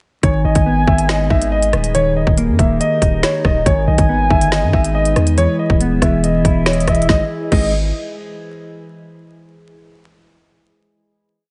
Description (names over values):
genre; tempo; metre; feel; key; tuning
hip hop, drill; 140 BPM; 4/4; half-time; G# harmonic minor; A4 = 439 Hz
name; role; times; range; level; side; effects
dark concert grand piano; melody; 0.2-7.7 s; C#5 to E5; -22 LUFS; equal; delay
gliding portamento lead; second line; 0.2-7.7 s; D#5 to G#5; -25 LUFS; equal; chorus, delay
mellow electric guitar; accompaniment; 0.2-7.7 s; D#3 to E4; -22 LUFS; equal; lush chorus
glassy FM pad; sustained chords; 0.7-7.3 s; D#3 to D#5; -29 LUFS; equal; ensemble chorus, built-in reverb
long sustained 808-style bass; bass; 0.2-7.9 s; D#1 to G#2; -21 LUFS; equal; none
drill drum kit; drums; 0.2-7.6 s; crash cymbal, finger snaps, hi-hat, kick drum, rim click, snare drum; -20 LUFS; equal; none
room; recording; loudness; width
little or no reverb; vinyl crackle, nothing above 10.5 kHz; -15 LUFS; mono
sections
0.2-7.1 hook; 7.1-8.8 final chord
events
none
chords
0.2 G#m; 1.9 D#; 3.7 G#m; 5.4 E; 7.1 G#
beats
| 0.23 0.66 1.09 1.52 | 1.95 2.38 2.81 3.23 | 3.66 4.09 4.52 4.95 | 5.38 5.80 6.23 6.66 | 7.09 7.52